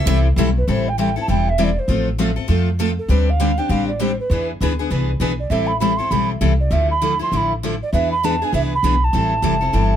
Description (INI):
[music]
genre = acoustic string swing (jazz manouche)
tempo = 199 BPM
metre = 4/4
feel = swing 59% on 8ths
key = A minor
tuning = A4 = 444 Hz
[part]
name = picked steel-string acoustic guitar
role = accompaniment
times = 0.0-9.9 s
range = D3 to A4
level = -22 LUFS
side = left 7 dB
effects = none
[part]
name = upright bass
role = bass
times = 0.0-10.0 s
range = E1 to F2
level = -20 LUFS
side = equal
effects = none
[part]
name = picked steel-string acoustic guitar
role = accompaniment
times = 0.1-9.9 s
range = D3 to B4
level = -26 LUFS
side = right 7 dB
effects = none
[part]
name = mellow reedy alto ocarina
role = melody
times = 0.6-10.0 s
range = A4 to C6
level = -21 LUFS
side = right 4 dB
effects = none
[sound]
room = light reverb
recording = none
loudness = -16 LUFS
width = side -10 dB against mid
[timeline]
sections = 0.7-10.0 A section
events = none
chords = 0.0 Am7; 1.9 F/A; 3.1 D7sus4; 4.3 E7; 5.5 Am7; 6.7 Dmadd9; 7.9 E7; 9.1 Am7